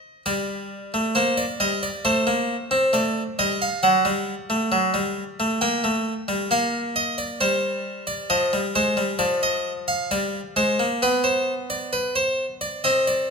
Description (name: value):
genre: classical, baroque-style two-part invention for harpsichord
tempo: 67 BPM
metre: 4/4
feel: straight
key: unclear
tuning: A4 = 444 Hz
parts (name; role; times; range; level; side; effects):
- harpsichord; solo; 0.0-13.3 s; F3 to G5; -20 LUFS; equal; none
room: moderate recital hall reverb, RT60 1.6 s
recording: minimal, uncompressed stereo recording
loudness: -20 LUFS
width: side -4 dB against mid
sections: 0.0-13.3 A section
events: none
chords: 0.3 Gm; 2.1 Am7b5; 3.8 F#m; 5.6 Gm; 7.4 Cm/G; 9.2 Dm7/F; 11.0 Bm